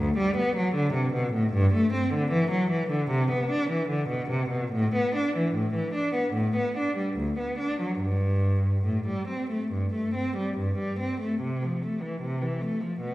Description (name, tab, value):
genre	classical, baroque-style suite movement for unaccompanied cello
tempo	69-78 BPM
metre	4/4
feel	rubato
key	G major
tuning	A4 = 440 Hz
part	rich cello	solo	0.0-13.1 s	D2 to D4	-24 LUFS	equal	none
room	wet recital hall reverb, RT60 1.7 s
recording	recorded in a church or concert hall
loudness	-24 LUFS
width	side -16 dB against mid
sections	0.0-11.4 A section; 11.4-13.1 A section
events	none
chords	none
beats	0.00 0.77 | 1.55 2.34 3.12 3.91 | 4.73 5.55 6.35 7.16 | 8.00 8.86 9.72 10.57 | 11.41 12.21 13.02